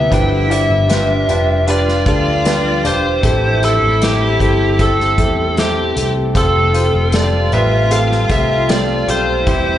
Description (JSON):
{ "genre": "pop ballad", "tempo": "77 BPM", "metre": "4/4", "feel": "straight", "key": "unclear", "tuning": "A4 = 437 Hz", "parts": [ { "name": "biting lead guitar", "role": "melody", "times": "0.0-9.8 s", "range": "G4 to G5", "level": "-18 LUFS", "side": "equal", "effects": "overdrive, slapback echo" }, { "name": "clear symphonic cello section", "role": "second line", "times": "0.0-9.8 s", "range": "B3 to F4", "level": "-22 LUFS", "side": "equal", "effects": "slapback echo, digital delay" }, { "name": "warm baby grand piano", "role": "accompaniment", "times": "0.0-9.8 s", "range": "G2 to D5", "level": "-19 LUFS", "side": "left 1 dB", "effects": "slapback echo" }, { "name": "granular cloud pad", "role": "sustained chords", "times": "0.0-9.8 s", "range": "E3 to G4", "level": "-26 LUFS", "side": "left 1 dB", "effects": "built-in reverb" }, { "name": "vintage muted fingered electric bass", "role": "bass", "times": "0.0-9.8 s", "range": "E1 to E2", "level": "-18 LUFS", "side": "equal", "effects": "none" }, { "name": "unplugged drum kit", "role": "drums", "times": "0.1-9.6 s", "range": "hi-hat, kick drum, snare drum", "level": "-19 LUFS", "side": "equal", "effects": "none" } ], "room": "small room ambience", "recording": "live gig heard through the venue's PA, club reverb, nothing above 10.8 kHz", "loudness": "-12 LUFS", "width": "side -11 dB against mid", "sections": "0.0-9.8 A section", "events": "none", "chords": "0.1 G7; 3.2 Am7; 6.4 Fadd9" }